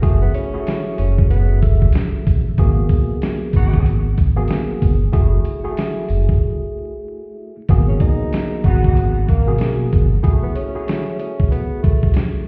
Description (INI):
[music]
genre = hip hop, boom-bap hip-hop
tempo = 94 BPM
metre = 4/4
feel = swing 60% on 16ths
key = G# phrygian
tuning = A4 = 439 Hz
[part]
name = tine electric piano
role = accompaniment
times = 0.0-12.5 s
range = B2 to G#4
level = -27 LUFS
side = equal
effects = cassette tape, high-pass filter, low-pass filter, plate reverb
[part]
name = round analog bass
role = bass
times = 0.0-10.2 s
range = F#1 to A1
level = -19 LUFS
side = equal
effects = none
[part]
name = dusty soul sampler-style drum kit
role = drums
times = 0.0-12.3 s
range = hi-hat, kick drum, snare drum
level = -19 LUFS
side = equal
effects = none
[part]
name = breathy tenor saxophone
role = melody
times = 0.2-1.9, 7.9-12.1 s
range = A3 to F#4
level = -30 LUFS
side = equal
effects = high-pass filter, low-pass filter, plate reverb, delay
[part]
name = tambourine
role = percussion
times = 0.4-6.3 s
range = none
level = -59 LUFS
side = equal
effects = none
[part]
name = mellow horn section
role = stabs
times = 3.5-3.8, 8.6-9.1 s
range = B3 to F#4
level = -37 LUFS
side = equal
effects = high-pass filter, low-pass filter, plate reverb, delay
[sound]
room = light reverb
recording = heard muffled through a wall, stone room reverb, vinyl crackle, EQ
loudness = -17 LUFS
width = mono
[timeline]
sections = 0.0-7.7 A section; 7.7-12.5 A section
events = break 6.4-7.7, 10.2-12.5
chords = 0.0 F#m9; 2.6 G#m9; 5.1 F#m9; 7.7 G#m9; 10.2 F#m9